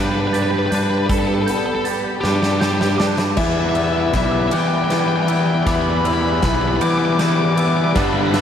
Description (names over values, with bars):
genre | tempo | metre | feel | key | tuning
post-rock | 52 BPM (dotted quarters) | 6/8 | straight | E minor | A4 = 442 Hz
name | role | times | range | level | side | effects
fuzz lead guitar | melody | 0.0-8.4 s | G4 to D6 | -23 LUFS | equal | distortion, ping-pong delay
airy breathy pad | sustained chords | 0.0-8.4 s | G4 to B5 | -27 LUFS | right 1 dB | chorus, phaser
glockenspiel with soft plastic mallets | arpeggios | 0.0-8.4 s | D6 to A6 | -29 LUFS | right 4 dB | ping-pong delay
twangy electric guitar | arpeggios | 0.0-8.4 s | E3 to G4 | -27 LUFS | left 1 dB | ensemble chorus, ping-pong delay
fuzz picked electric bass | bass | 0.0-8.4 s | B1 to E3 | -20 LUFS | equal | overdrive
huge arena drum kit | drums | 0.3-8.4 s | crash cymbal, hi-hat, kick drum, ride cymbal, snare drum | -24 LUFS | right 1 dB | none
biting overdriven guitar | riff | 3.4-8.4 s | G2 to E4 | -21 LUFS | left 8 dB | none
overdriven semi-hollow guitar | riff | 7.9-8.4 s | G2 to G3 | -21 LUFS | right 8 dB | ensemble chorus
room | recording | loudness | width
moderate lush hall reverb, RT60 2.5 s | dreamy mix soaked in reverb, vinyl crackle | -16 LUFS | side -8 dB against mid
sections
0.0-3.4 A section; 3.4-8.4 B section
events
drum fill 2.2-3.4, 3.4-8.4; build-up 3.4-8.4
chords
0.0 G; 3.4 Em7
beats
| 1.10 2.24 | 3.39 4.53 | 5.67 6.82 | 7.96